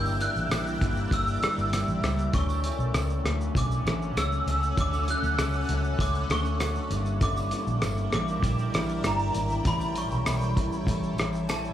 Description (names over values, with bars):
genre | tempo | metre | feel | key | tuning
indie pop, bedroom pop | 98 BPM | 4/4 | straight | D major | A4 = 441 Hz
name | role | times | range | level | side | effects
glockenspiel with brass mallets | melody | 0.0-11.7 s | A5 to F#6 | -31 LUFS | right 1 dB | ensemble chorus, slapback echo
electric guitar through a small old amp | accompaniment | 0.0-11.7 s | G2 to E4 | -33 LUFS | left 1 dB | lush chorus, warbly pitch drift, slapback echo
shimmering ambient pad | sustained chords | 0.0-11.7 s | C#4 to G5 | -37 LUFS | equal | chorus, built-in reverb, phaser
vintage muted fingered electric bass | bass | 0.0-11.7 s | G1 to D2 | -28 LUFS | equal | none
cloth-damped thuddy drum kit | drums | 0.1-11.7 s | hi-hat, kick drum, rim click, shaker | -29 LUFS | equal | none
tambourine | percussion | 0.1-11.6 s | none | -48 LUFS | right 3 dB | none
room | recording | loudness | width
light reverb | live gig heard through the venue's PA, club reverb | -24 LUFS | side -11 dB against mid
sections
0.0-11.7 A section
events
none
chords
0.0 Gm6; 2.3 Dmaj7; 6.9 Gm6; 9.7 A7